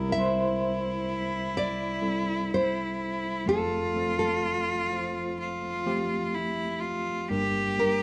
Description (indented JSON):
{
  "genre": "acoustic folk-pop ballad",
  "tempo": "62 BPM",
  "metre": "4/4",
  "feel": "straight",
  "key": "F major",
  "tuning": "A4 = 441 Hz",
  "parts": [
    { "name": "rich cello", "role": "second line", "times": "0.0-8.0 s", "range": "E4 to G4", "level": "-33 LUFS", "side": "equal", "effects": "none" },
    { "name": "tine electric piano", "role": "accompaniment", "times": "0.0-8.0 s", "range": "F1 to Bb4", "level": "-34 LUFS", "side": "equal", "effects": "overdrive" },
    { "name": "electric guitar through a small old amp", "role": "arpeggios", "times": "0.0-7.8 s", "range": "F3 to C5", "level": "-38 LUFS", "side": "equal", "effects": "tremolo" },
    { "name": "nylon-string guitar", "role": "melody", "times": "0.1-8.0 s", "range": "A4 to E5", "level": "-32 LUFS", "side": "equal", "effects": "none" }
  ],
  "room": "moderate studio reverb, RT60 0.8 s",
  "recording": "nothing above 10.4 kHz, faint mains hum",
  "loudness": "-29 LUFS",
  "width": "mono",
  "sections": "0.0-8.0 A section",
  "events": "none",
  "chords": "0.0 C7; 3.5 F; 7.3 Gm",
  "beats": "0.58 1.54 2.51 | 3.47 4.43 5.39 6.35 | 7.31"
}